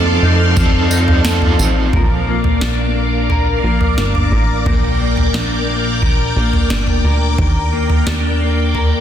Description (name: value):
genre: dream pop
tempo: 88 BPM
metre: 4/4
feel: straight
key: Bb major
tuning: A4 = 440 Hz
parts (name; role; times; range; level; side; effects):
- electric slide guitar; melody; 0.0-1.2 s; A4; -30 LUFS; right 2 dB; none
- overdriven electric guitar; accompaniment; 0.0-2.4 s; F3 to A4; -23 LUFS; right 5 dB; tremolo, ensemble chorus
- phased string machine; sustained chords; 0.0-9.0 s; A4 to D6; -20 LUFS; right 1 dB; ensemble chorus, phaser
- electric guitar at the edge of break-up; arpeggios; 0.0-9.0 s; Bb2 to Bb4; -20 LUFS; left 4 dB; analog chorus, digital delay
- plucky analog bass; bass; 0.0-9.0 s; G1 to F2; -17 LUFS; equal; none
- booming analog drum machine; drums; 0.6-8.9 s; kick drum, snare drum, tambourine, toms; -17 LUFS; right 1 dB; none
room: light reverb, digital ambience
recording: dense, heavily limited modern master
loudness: -12 LUFS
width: side -10 dB against mid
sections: 0.0-1.9 A section; 1.9-9.0 B section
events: none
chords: 0.0 F7; 1.9 Bb; 7.4 Ebmaj7